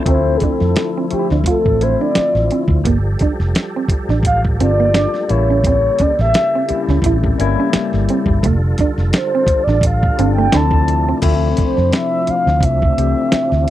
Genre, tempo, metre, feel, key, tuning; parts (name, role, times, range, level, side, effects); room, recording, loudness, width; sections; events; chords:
R&B, neo-soul; 86 BPM; 4/4; swing 54% on 16ths; D minor; A4 = 444 Hz
barky tine electric piano; accompaniment; 0.0-13.7 s; E3 to G4; -20 LUFS; left 8 dB; phaser
tonewheel organ; sustained chords; 0.0-13.7 s; C3 to A4; -26 LUFS; right 1 dB; chorus vibrato, fast rotary speaker
mellow horn-like synth lead; melody; 0.1-13.7 s; G4 to A5; -18 LUFS; equal; chorus
hollow-body jazz guitar; second line; 0.1-11.2 s; A3 to F4; -19 LUFS; right 6 dB
vintage muted fingered electric bass; bass; 0.1-13.6 s; F1 to F2; -17 LUFS; equal
dusty soul sampler-style drum kit; drums; 0.1-13.7 s; crash cymbal, hi-hat, kick drum, snare drum; -18 LUFS; equal
little or no reverb; dry, close 1970s-style studio recording; -13 LUFS; side -13 dB against mid
0.1-11.2 A section; 11.2-13.7 B section
soft synth lead solo 0.1-11.2
0.1 Dm9; 2.9 Gm9; 5.3 A7b9; 8.4 F69; 10.5 Dm7; 11.2 Dm9